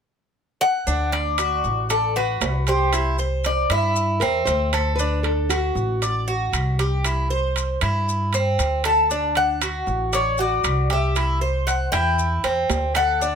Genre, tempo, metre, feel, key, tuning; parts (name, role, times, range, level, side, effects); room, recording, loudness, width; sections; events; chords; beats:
latin, Cuban son and guajira; 117 BPM; 4/4; straight; D major; A4 = 443 Hz
Cuban tres; melody; 0.6-4.7, 8.9-13.4 s; A4 to A5; -22 LUFS; left 2 dB
Cuban tres; arpeggios; 0.9-13.4 s; C4 to D5; -24 LUFS; right 2 dB
upright bass; bass; 0.9-13.4 s; A1 to G2; -24 LUFS; equal
maracas; percussion; 0.9-13.4 s; -33 LUFS; left 5 dB
timbales; percussion; 1.1-13.2 s; -28 LUFS; right 7 dB
claves; percussion; 1.4-13.2 s; -36 LUFS; equal
nylon-string guitar; second line; 4.2-6.5 s; F#4 to C5; -26 LUFS; left 2 dB
light reverb; close, detailed microphones; -19 LUFS; side -7 dB against mid
0.9-13.4 A section
0.0 N.C.; 0.9 D; 2.9 C; 5.0 D; 7.0 C; 9.1 D; 11.2 C
0.36 | 0.87 1.39 1.90 2.42 | 2.93 3.44 3.96 4.47 | 4.99 5.50 6.02 6.54 | 7.05 7.56 8.08 8.59 | 9.11 9.62 10.13 10.65 | 11.16 11.67 12.19 12.70 | 13.21